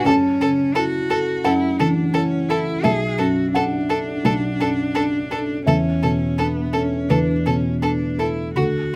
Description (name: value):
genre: neoclassical piano and strings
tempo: 85 BPM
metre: 4/4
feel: rubato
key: unclear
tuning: A4 = 440 Hz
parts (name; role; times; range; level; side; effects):
- rich violin; melody; 0.0-8.6 s; F#4 to A4; -26 LUFS; equal; none
- rich cello; second line; 0.0-9.0 s; B3 to G#4; -26 LUFS; equal; none
- felt-muted upright piano; accompaniment; 0.0-9.0 s; B1 to A5; -22 LUFS; equal; none
room: light reverb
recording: none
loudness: -20 LUFS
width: mono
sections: 0.0-9.0 A section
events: none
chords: 0.1 F#m7; 2.8 Bm7; 5.7 E7sus4